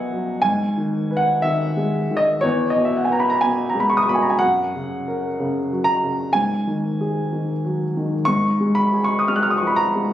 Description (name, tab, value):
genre	classical, romantic nocturne for solo piano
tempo	61 BPM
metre	4/4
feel	rubato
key	unclear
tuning	A4 = 437 Hz
part	warm upright piano	solo	0.0-10.1 s	E2 to F#6	-18 LUFS	equal	none
room	moderate recital hall reverb, RT60 1.5 s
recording	recorded on a phone in the room, club reverb, compression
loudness	-18 LUFS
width	side -12 dB against mid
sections	0.0-10.1 A section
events	none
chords	0.4 G#m; 2.4 Emaj13; 4.4 F#; 6.3 G#5; 8.3 G#m13